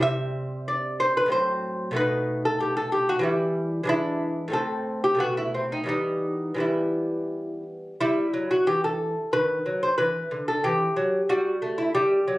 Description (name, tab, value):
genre	classical, baroque-style dance for lute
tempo	92 BPM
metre	3/4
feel	rubato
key	E minor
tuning	A4 = 440 Hz
part	lute	solo	0.0-12.4 s	A2 to E5	-23 LUFS	equal	none
room	light reverb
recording	recorded on a phone in the room, club reverb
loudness	-23 LUFS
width	side -18 dB against mid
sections	0.0-8.0 A section; 8.0-12.4 B section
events	none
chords	0.0 C; 1.3 F#dim/A; 2.0 B7; 3.2 Em; 3.9 E7; 4.5 Am; 5.2 B7b9; 5.9 Em; 9.3 B/D#; 10.0 Em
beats	| 0.03 0.68 1.32 | 1.96 2.60 3.24 | 3.88 4.53 5.19 | 5.89 6.60 7.31 | 8.00 8.67 9.33 | 9.98 10.63 11.29 | 11.95